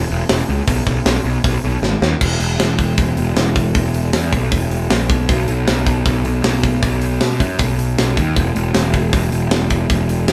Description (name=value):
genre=punk rock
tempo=156 BPM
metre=4/4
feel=straight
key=unclear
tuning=A4 = 441 Hz
part: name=fuzz picked electric bass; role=bass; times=0.0-10.3 s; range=E1 to B2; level=-19 LUFS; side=equal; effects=overdrive
part: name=tight metal drum kit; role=drums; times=0.3-10.3 s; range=crash cymbal, hi-hat, kick drum, snare drum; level=-20 LUFS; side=equal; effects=none
room=light reverb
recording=band playing live in one room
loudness=-17 LUFS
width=mono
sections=0.0-2.2 A section; 2.2-10.3 B section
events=drum fill 1.8-2.2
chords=none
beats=0.29 | 0.67 1.06 1.44 1.82 | 2.21 2.59 2.98 3.36 | 3.75 4.13 4.52 4.90 | 5.29 5.67 6.05 6.44 | 6.83 7.21 7.59 7.98 | 8.36 8.75 9.13 9.52 | 9.90 10.28